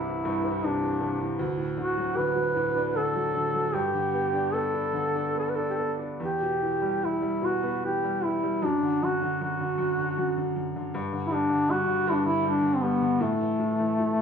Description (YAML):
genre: celtic folk, Celtic slow air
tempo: 70-81 BPM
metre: 3/4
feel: rubato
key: unclear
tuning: A4 = 440 Hz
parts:
  - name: mellow duduk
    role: melody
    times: 0.0-14.2 s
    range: A3 to B4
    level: -26 LUFS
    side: equal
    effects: none
  - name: clear upright piano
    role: accompaniment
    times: 0.0-14.2 s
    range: C2 to D4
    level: -29 LUFS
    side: equal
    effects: none
room: wet large studio reverb, RT60 0.8 s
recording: band playing live in one room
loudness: -24 LUFS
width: side -7 dB against mid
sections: 0.0-14.2 A section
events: none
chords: 0.0 Cadd9; 1.4 D; 3.7 Gadd9; 6.2 Em; 8.6 D/F#; 10.9 G5; 13.2 A5